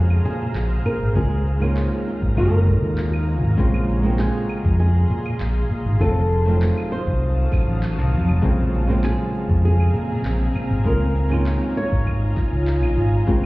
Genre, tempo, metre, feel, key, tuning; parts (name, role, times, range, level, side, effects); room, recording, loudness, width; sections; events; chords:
sunset chillout; 99 BPM; 4/4; straight; Bb minor; A4 = 439 Hz
flamenco guitar; melody; 0.0-12.9 s; F4 to Db5; -28 LUFS; equal; ping-pong delay
flamenco guitar; accompaniment; 0.0-13.5 s; Db3 to Gb4; -26 LUFS; right 1 dB; auto-pan
shimmering ambient pad; sustained chords; 0.0-13.5 s; Gb3 to Eb6; -31 LUFS; equal; chorus, built-in reverb
overdriven fingered electric bass; bass; 0.0-13.5 s; F1 to Bb2; -19 LUFS; equal
wind-like tuned noise texture; texture; 0.0-13.5 s; F5; -39 LUFS; left 1 dB; built-in reverb
electronic claves, shaker and handclaps; drums; 0.1-13.5 s; -40 LUFS; right 1 dB
electronic kick drum; drums; 1.2-13.4 s; -22 LUFS; equal
light reverb, digital ambience; heard muffled through a wall, stone room reverb, EQ; -18 LUFS; side -20 dB against mid
0.0-3.6 A section; 3.6-13.5 B section
break 3.0-3.6
0.0 Bbm9; 1.2 Db69; 2.4 Ab9sus4; 3.6 Bbm9; 6.0 F7b9; 8.4 Bbm9; 10.9 Db69